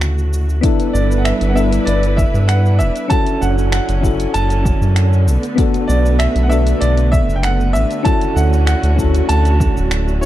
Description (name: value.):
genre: sunset chillout.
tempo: 97 BPM.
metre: 4/4.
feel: straight.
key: D major.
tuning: A4 = 439 Hz.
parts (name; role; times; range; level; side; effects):
soft electric-piano-like synth keys; accompaniment; 0.0-10.3 s; C#3 to A4; -21 LUFS; moving between left 6 dB and right 6 dB; chorus, auto-pan.
rich studio string section; sustained chords; 0.0-10.3 s; C#3 to B4; -23 LUFS; right 1 dB; none.
round analog bass; bass; 0.0-10.3 s; D1 to G2; -14 LUFS; equal; none.
deep house drum kit; drums; 0.0-10.3 s; finger snaps, hi-hat, shaker; -27 LUFS; equal; overdrive, studio reverb.
electronic kick drum; drums; 0.6-9.7 s; none; -17 LUFS; equal; overdrive, studio reverb.
bright grand piano; melody; 0.9-10.3 s; C#5 to A5; -22 LUFS; right 1 dB; tape echo.
room: little or no reverb.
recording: dark, warm production.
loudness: -12 LUFS.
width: side -13 dB against mid.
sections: 0.6-10.3 A section.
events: none.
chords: 0.0 Dmaj7; 0.6 G6; 3.1 Dmaj7/F#; 5.3 Bm7; 8.1 Dmaj7.